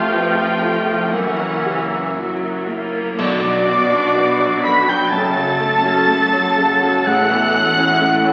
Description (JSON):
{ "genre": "cinematic, emotional film score for orchestra", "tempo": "56-65 BPM", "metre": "4/4", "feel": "rubato", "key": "B minor from 3.2 s", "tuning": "A4 = 440 Hz", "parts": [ { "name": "rich chamber violin section", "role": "melody", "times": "0.0-8.3 s", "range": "F#5 to B6", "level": "-24 LUFS", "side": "equal", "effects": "none" }, { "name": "clear oboe", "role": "second line", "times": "0.0-8.3 s", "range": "D5 to B5", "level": "-24 LUFS", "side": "equal", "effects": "none" }, { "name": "warm clarinet", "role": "second line", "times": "0.0-2.9 s", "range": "A3 to A#3", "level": "-28 LUFS", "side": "equal", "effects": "none" }, { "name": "warm symphonic violin section", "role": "second line", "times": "0.0-8.3 s", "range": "F#4 to B5", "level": "-31 LUFS", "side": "equal", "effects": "none" }, { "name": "felt-muted upright piano", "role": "accompaniment", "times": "0.0-8.3 s", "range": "A1 to D5", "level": "-27 LUFS", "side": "equal", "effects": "none" }, { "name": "rich symphonic viola section", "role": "accompaniment", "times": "0.0-8.3 s", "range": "C#3 to A4", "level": "-23 LUFS", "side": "equal", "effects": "none" }, { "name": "mellow French horn section", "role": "sustained chords", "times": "0.0-8.3 s", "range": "C#4 to B4", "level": "-30 LUFS", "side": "equal", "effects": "none" }, { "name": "concert harp", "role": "arpeggios", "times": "0.0-8.3 s", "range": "F2 to B5", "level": "-29 LUFS", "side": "equal", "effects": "none" }, { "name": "rich symphonic cello section", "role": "bass", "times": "0.0-8.3 s", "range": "F2 to B2", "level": "-31 LUFS", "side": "equal", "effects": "none" }, { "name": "rich symphonic double bass section", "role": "bass", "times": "0.0-8.3 s", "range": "F1 to B1", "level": "-36 LUFS", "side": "equal", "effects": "none" }, { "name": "mellow hollow small flute group", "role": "second line", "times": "3.2-8.3 s", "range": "D5 to B5", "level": "-24 LUFS", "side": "equal", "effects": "none" }, { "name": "clash cymbals and concert bass drum", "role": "percussion", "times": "3.2-5.1 s", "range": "none", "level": "-33 LUFS", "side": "equal", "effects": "none" } ], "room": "wet scoring stage reverb, RT60 1.7 s", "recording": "very old 78 rpm record, vinyl crackle", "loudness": "-17 LUFS", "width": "mono", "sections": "0.0-3.2 A section; 3.2-8.3 B section", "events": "band accent 3.2-4.2", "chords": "0.0 Fadd9; 1.1 F#7; 3.2 Bm; 5.1 F#m; 7.1 A" }